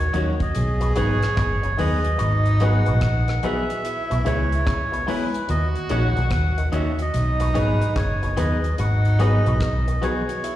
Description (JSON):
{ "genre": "roots reggae", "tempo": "73 BPM", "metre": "4/4", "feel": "swing 64% on 16ths", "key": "G# minor", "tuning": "A4 = 439 Hz", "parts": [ { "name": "melodica", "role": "melody", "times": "0.0-10.6 s", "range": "B4 to F#5", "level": "-27 LUFS", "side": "equal", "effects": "dub echo, plate reverb, slapback echo" }, { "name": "breathy tenor saxophone", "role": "second line", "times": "0.0-10.6 s", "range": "D#4 to G#4", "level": "-30 LUFS", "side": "right 4 dB", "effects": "dub echo, plate reverb, slapback echo" }, { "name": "auto-wah clav", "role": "arpeggios", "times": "0.0-10.2 s", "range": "G#2 to D#3", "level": "-35 LUFS", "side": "left 5 dB", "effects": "overdrive, plate reverb, slapback echo" }, { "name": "vintage muted fingered electric bass", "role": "bass", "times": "0.0-10.0 s", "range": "F#1 to D#2", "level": "-20 LUFS", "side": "equal", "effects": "none" }, { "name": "damped 70s drum kit", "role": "drums", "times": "0.0-10.6 s", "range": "hi-hat, kick drum, rim click", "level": "-29 LUFS", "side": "equal", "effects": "none" }, { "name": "electric guitar at the edge of break-up", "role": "accompaniment", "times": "0.1-10.3 s", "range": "D#3 to G#4", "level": "-31 LUFS", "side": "right 3 dB", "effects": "spring reverb, dub echo, plate reverb, slapback echo" }, { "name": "warm upright piano", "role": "stabs", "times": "0.1-10.2 s", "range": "D#4 to C#5", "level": "-29 LUFS", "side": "left 5 dB", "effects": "plate reverb, slapback echo" } ], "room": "light reverb", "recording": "live gig heard through the venue's PA, recital hall reverb", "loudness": "-19 LUFS", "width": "side -13 dB against mid", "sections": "0.0-10.6 A section", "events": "none", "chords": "0.0 D#m7; 0.5 B6; 2.2 G#m7; 3.8 C#m7; 5.5 D#m7; 7.1 B6; 8.8 G#m7" }